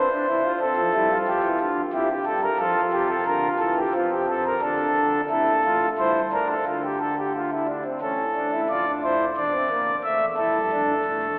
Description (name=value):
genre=classical, baroque-style 3-part fugue for pipe organ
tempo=89 BPM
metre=3/4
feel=straight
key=F major, D minor from 4.6 s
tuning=A4 = 440 Hz
part: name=pipe organ, principal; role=solo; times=0.0-11.4 s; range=C#1 to E5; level=-20 LUFS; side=equal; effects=none
room=wet church reverb, RT60 3.4 s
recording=heard from further back in the room, telephone sound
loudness=-20 LUFS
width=side -31 dB against mid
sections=0.0-4.6 A section; 4.6-8.7 B section; 8.7-11.4 C section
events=none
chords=0.0 C; 0.6 F; 1.9 C; 2.6 F; 4.6 Dm; 6.0 Em7b5/G; 6.7 Dm; 8.0 A; 8.7 Dm/F; 10.1 A/C#; 10.7 Dm